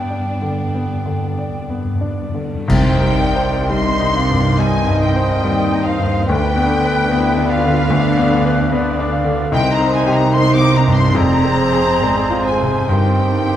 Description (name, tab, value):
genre	classical, romantic movement for piano and orchestra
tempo	57-75 BPM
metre	4/4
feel	rubato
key	C minor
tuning	A4 = 440 Hz
part	clear grand piano	melody	0.0-13.6 s	C2 to D5	-18 LUFS	left 2 dB	none
part	warm symphonic violin section	melody	0.0-13.6 s	D5 to D6	-25 LUFS	left 2 dB	none
part	bright symphonic violin section	second line	0.0-13.6 s	D4 to D6	-29 LUFS	left 3 dB	none
part	mellow silver concert flute	second line	0.0-13.6 s	F5 to D6	-24 LUFS	left 1 dB	none
part	warm studio viola section	accompaniment	0.0-13.6 s	B3 to Eb5	-26 LUFS	right 1 dB	none
part	dark symphonic cello section	bass	0.0-13.6 s	F2 to G3	-24 LUFS	right 3 dB	none
part	rich symphonic double bass section	bass	0.0-13.6 s	F1 to G2	-23 LUFS	right 4 dB	none
part	timpani	percussion	0.0-4.1 s	G2 to C3	-25 LUFS	left 1 dB	none
part	dark clarinet	second line	2.7-13.6 s	G4 to F5	-25 LUFS	left 1 dB	none
part	warm oboe	second line	2.7-13.6 s	B4 to C5	-28 LUFS	right 1 dB	none
part	dark bassoon	accompaniment	2.7-13.6 s	D3 to Ab3	-25 LUFS	right 2 dB	none
part	mellow French horn section	sustained chords	2.7-13.6 s	B3 to Ab4	-24 LUFS	left 2 dB	none
part	clash cymbals and concert bass drum	percussion	2.7-4.6 s	none	-22 LUFS	equal	none
room	moderate scoring stage reverb, RT60 1.6 s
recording	dark, warm production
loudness	-14 LUFS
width	side -11 dB against mid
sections	0.0-2.7 A section; 2.7-13.6 A section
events	timpani fill 0.0-2.7; band accent 2.7-3.7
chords	0.0 G; 2.7 Cm; 6.3 Bdim/D; 9.5 Cm; 11.2 Fm; 12.9 Cm/G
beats	0.76 1.71 | 2.69 3.70 4.59 5.43 | 6.28 7.09 7.90 8.73 | 9.53 10.34 11.16 12.02 | 12.90